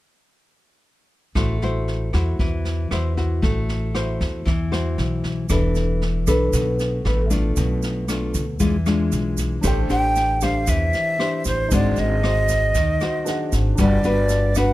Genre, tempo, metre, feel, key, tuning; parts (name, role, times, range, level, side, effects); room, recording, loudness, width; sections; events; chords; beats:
bossa nova; 116 BPM; 4/4; straight; A dorian; A4 = 440 Hz
nylon-string guitar; accompaniment; 1.4-14.7 s; B2 to C5; -23 LUFS; left 2 dB
upright bass; bass; 1.4-14.7 s; E1 to E2; -22 LUFS; equal
jazz brush drum kit; drums; 1.4-14.7 s; kick drum, rim click, snare drum; -27 LUFS; equal
tube shaker; percussion; 5.5-14.7 s; -34 LUFS; right 9 dB
warm grand piano; accompaniment; 9.6-14.7 s; D4 to G5; -30 LUFS; right 1 dB
breathy jazz flute; melody; 9.9-14.7 s; C5 to G5; -22 LUFS; right 1 dB
little or no reverb; close, detailed microphones; -18 LUFS; side -16 dB against mid
1.4-9.6 A section; 9.6-14.7 B section
1.4 Am6; 5.5 E7sus4; 7.6 Bm7b5; 8.6 E7b9; 9.6 Am7; 11.7 G#7#11; 13.8 Gmaj7
| 1.35 1.87 2.39 2.91 | 3.43 3.94 4.46 4.98 | 5.50 6.02 6.54 7.05 | 7.57 8.09 8.61 9.12 | 9.64 10.16 10.68 11.19 | 11.71 12.23 12.75 13.26 | 13.78 14.30